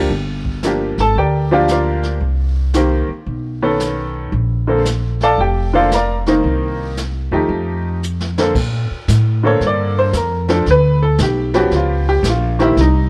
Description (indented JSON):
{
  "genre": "jazz piano trio",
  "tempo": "114 BPM",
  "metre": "4/4",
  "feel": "swing 66% on 8ths",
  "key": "Bb major",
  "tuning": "A4 = 440 Hz",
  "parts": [
    { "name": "bright upright piano", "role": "melody", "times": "0.0-13.1 s", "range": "D3 to Bb5", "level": "-18 LUFS", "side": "equal", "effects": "none" },
    { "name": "upright bass", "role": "bass", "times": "0.0-13.1 s", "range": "F1 to Bb2", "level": "-20 LUFS", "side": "equal", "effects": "none" },
    { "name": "jazz brush drum kit", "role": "drums", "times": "0.1-13.1 s", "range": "brushed snare drum, crash cymbal, hi-hat, kick drum, snare drum", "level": "-28 LUFS", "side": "equal", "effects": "none" }
  ],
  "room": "light reverb",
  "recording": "worn, warbling old tape, cassette tape, warbly pitch drift",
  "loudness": "-16 LUFS",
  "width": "mono",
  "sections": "0.0-8.6 A section; 8.6-13.1 B section",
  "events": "drum fill 8.0-8.6; upright piano solo 8.6-13.1",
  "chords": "0.1 Gm7; 2.2 Cm7; 3.3 B9; 4.3 Bbmaj9; 6.4 Cm7; 7.5 F9; 8.6 Bbmaj9; 10.7 N.C.; 11.7 Db7#11",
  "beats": "| 0.10 0.63 1.16 1.69 | 2.22 2.75 3.27 3.80 | 4.33 4.86 5.38 5.91 | 6.44 6.97 7.50 8.03 | 8.55 9.08 9.61 10.14 | 10.66 11.19 11.72 12.25 | 12.77"
}